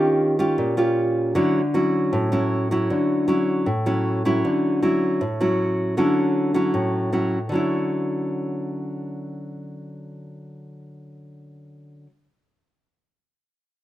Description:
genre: bossa nova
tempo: 156 BPM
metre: 4/4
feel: straight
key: D major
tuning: A4 = 440 Hz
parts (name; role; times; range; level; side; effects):
- nylon-string guitar; solo; 0.0-12.1 s; A2 to G4; -20 LUFS; equal; slapback echo
room: light reverb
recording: recorded outdoors, with no room sound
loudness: -20 LUFS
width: side -14 dB against mid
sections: 0.0-4.4 A section; 4.4-7.5 B section; 7.5-10.6 C section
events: none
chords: 0.0 Eb9; 1.4 Dmaj9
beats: 0.21 0.59 0.97 | 1.36 1.75 2.13 2.51 | 2.90 3.28 3.67 4.05 | 4.44 4.82 5.21 5.59 | 5.98 6.36 6.75 7.13 | 7.52 7.90 8.29 8.67 | 9.06 9.44 9.83 10.21

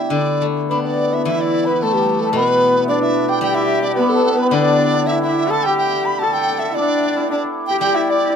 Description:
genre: chinese traditional, Chinese chamber ensemble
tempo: 110 BPM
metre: 2/4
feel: rubato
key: D zhi mode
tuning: A4 = 441 Hz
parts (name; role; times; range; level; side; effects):
- mellow hollow large dizi; melody; 0.0-8.4 s; G4 to B5; -20 LUFS; right 3 dB; none
- hammered dulcimer; second line; 0.0-8.4 s; G3 to A4; -20 LUFS; right 1 dB; none
- steel-string zither; accompaniment; 0.0-8.4 s; B2 to D4; -23 LUFS; left 6 dB; none
- bright reedy low xiao; second line; 0.7-8.4 s; D5 to B5; -24 LUFS; left 3 dB; none
- warm horsehead fiddle; second line; 0.7-8.4 s; A3 to A4; -22 LUFS; left 5 dB; none
room: light reverb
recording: close, detailed microphones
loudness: -15 LUFS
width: side -7 dB against mid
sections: 0.0-1.3 A section; 1.3-8.4 B section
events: none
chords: none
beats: | 0.14 0.70 | 1.27 1.82 | 2.37 2.90 | 3.44 3.99 | 4.53 5.09 | 5.65 6.20 | 6.75 7.29 | 7.83

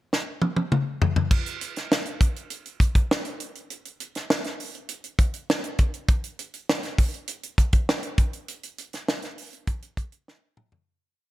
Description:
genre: pop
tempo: 100 BPM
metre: 4/4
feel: straight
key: none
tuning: none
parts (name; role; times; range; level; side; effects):
- tight funk drum kit; drums; 0.1-10.9 s; crash cymbal, hi-hat, kick drum, snare drum, toms; -23 LUFS; equal; none
room: light reverb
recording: none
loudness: -23 LUFS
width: side -16 dB against mid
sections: 0.0-1.3 pickup bar; 1.3-10.9 verse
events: drum fill 0.1-1.3, 10.3-10.9; fade-out 8.5-10.9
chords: none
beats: 0.12 0.71 | 1.31 1.91 2.50 3.10 | 3.70 4.30 4.89 5.49 | 6.09 6.69 7.29 7.88 | 8.48 9.08 9.68 10.27

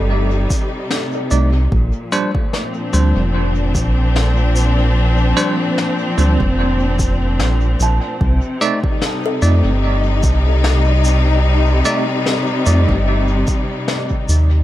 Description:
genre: ambient dub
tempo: 74 BPM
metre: 4/4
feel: swing 55% on 16ths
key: C dorian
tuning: A4 = 436 Hz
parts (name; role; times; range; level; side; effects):
- clear symphonic string section; sustained chords; 0.0-14.6 s; Bb2 to Eb4; -19 LUFS; left 2 dB; none
- kalimba; arpeggios; 0.0-2.4, 7.8-11.8 s; A4 to A5; -29 LUFS; equal; dub echo
- round analog bass; bass; 0.0-14.6 s; F1 to F2; -14 LUFS; equal; tube saturation
- electronic kick drum; drums; 0.5-14.3 s; none; -19 LUFS; equal; overdrive
- shaker and snare drum; drums; 0.5-14.5 s; none; -25 LUFS; left 3 dB; dub echo
- bell-like tine electric piano; stabs; 1.3-12.9 s; G3 to D5; -22 LUFS; right 2 dB; medium stereo tremolo, dub echo
room: light reverb, small room ambience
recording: none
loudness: -14 LUFS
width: side -14 dB against mid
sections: 0.0-14.6 A section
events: none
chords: 0.0 Cm6; 1.7 Bb69; 8.2 Cm69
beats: 0.10 0.91 | 1.72 2.53 3.34 4.15 | 4.96 5.78 6.59 7.40 | 8.21 9.02 9.83 10.64 | 11.45 12.26 13.07 13.88

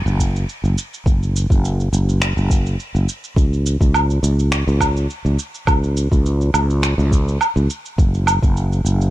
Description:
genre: organic downtempo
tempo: 104 BPM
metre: 4/4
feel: swing 54% on 16ths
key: unclear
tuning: A4 = 445 Hz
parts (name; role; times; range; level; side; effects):
- sustaining fretless electric bass; bass; 0.1-9.1 s; F#1 to C#2; -17 LUFS; equal; none
- electronic shaker, finger snaps and woodblock; drums; 0.1-9.1 s; none; -23 LUFS; right 2 dB; none
- electronic kick drum; drums; 0.2-8.5 s; none; -16 LUFS; equal; none
room: little or no reverb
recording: dark, warm production, lossy compression artefacts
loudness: -15 LUFS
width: side -15 dB against mid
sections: 0.0-9.1 A section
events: none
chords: none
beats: 0.48 | 1.06 1.64 2.21 2.79 | 3.37 3.94 4.52 5.10 | 5.67 6.25 6.83 7.41 | 7.98 8.56

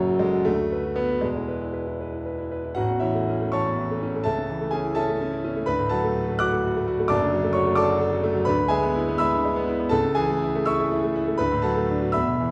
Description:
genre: classical, virtuoso piano study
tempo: 76-90 BPM (dotted quarters)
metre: 6/8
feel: rubato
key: A major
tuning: A4 = 440 Hz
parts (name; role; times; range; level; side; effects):
- clear grand piano; solo; 0.0-12.5 s; E1 to F#6; -24 LUFS; equal; none
room: wet recital hall reverb, RT60 1.4 s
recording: recorded in a church or concert hall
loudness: -24 LUFS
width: mono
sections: 0.0-2.8 A section; 2.8-12.5 B section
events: none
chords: 0.5 Bm/D; 1.2 E; 2.8 A; 4.3 A/C#; 5.7 D; 7.1 D/F#; 8.5 E7/D; 9.9 A/C#; 11.4 D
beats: 0.47 | 1.23 2.00 | 2.77 3.54 | 4.26 4.97 | 5.67 6.41 | 7.10 7.78 | 8.47 9.21 | 9.92 10.68 | 11.40 12.14

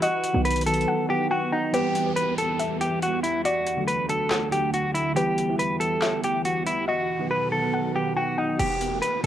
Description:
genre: hip hop, trap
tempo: 140 BPM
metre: 4/4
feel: half-time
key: E minor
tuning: A4 = 441 Hz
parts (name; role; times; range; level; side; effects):
- semi-hollow electric guitar; melody; 0.0-9.3 s; D#4 to B4; -25 LUFS; equal; low-pass filter, cassette tape
- soft round pluck; second line; 0.0-8.6 s; B4 to G5; -31 LUFS; left 3 dB; chorus, cassette tape, analog delay
- soft electric-piano-like synth keys; accompaniment; 0.0-8.6 s; D3 to G4; -29 LUFS; right 2 dB; chorus, phaser, low-pass filter, cassette tape
- ethereal airy pad; sustained chords; 0.0-9.3 s; D2 to B4; -34 LUFS; equal; ensemble chorus, built-in reverb, cassette tape
- trap drum kit; drums; 0.0-9.3 s; crash cymbal, handclaps, hi-hat, snare drum; -32 LUFS; equal; none
- short 808-style bass; bass; 0.3-0.9, 8.6-9.3 s; E1 to B1; -28 LUFS; equal; none
- downlifter and riser; sound effects; 1.7-9.3 s; none; -38 LUFS; right 1 dB; none
room: moderate spring reverb, RT60 1.2 s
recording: home recording on cassette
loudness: -22 LUFS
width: side -11 dB against mid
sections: 0.0-1.7 A section; 1.7-8.6 B section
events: drums muted 0.9-1.7; riser 6.5-8.6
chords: 0.0 B; 1.7 Em; 3.5 D; 5.2 Em; 6.9 B; 8.6 Em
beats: | 0.02 0.45 0.88 1.31 | 1.74 2.17 2.59 3.02 | 3.45 3.88 4.31 4.74 | 5.17 5.59 6.02 6.45 | 6.88 7.31 7.74 8.17 | 8.59 9.02

